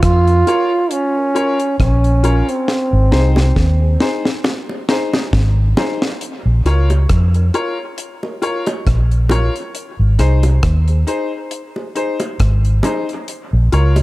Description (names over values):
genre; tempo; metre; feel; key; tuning
dub reggae; 68 BPM; 4/4; swing 56% on 16ths; Bb minor; A4 = 440 Hz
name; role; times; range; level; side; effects
warm trombone; melody; 0.0-4.3 s; C4 to F4; -17 LUFS; right 1 dB; dub echo
vintage muted fingered electric bass; bass; 0.0-14.0 s; Ab1 to F2; -12 LUFS; equal; none
deep reggae drum kit; drums; 0.0-14.0 s; hi-hat, kick drum, rim click, snare drum; -19 LUFS; equal; none
clear upright piano; stabs; 0.3-13.9 s; Eb4 to Db5; -22 LUFS; left 2 dB; dub echo
bongos; percussion; 3.1-14.0 s; none; -25 LUFS; right 1 dB; dub echo
room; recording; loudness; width
light reverb, studio ambience; dark, warm production; -13 LUFS; side -18 dB against mid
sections
0.0-6.2 A section; 6.2-14.0 B section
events
break 0.0-2.7; drum fill 2.7-6.2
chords
0.0 Bbm; 2.7 Ab; 6.2 Bbm; 9.7 Ab; 13.3 Bbm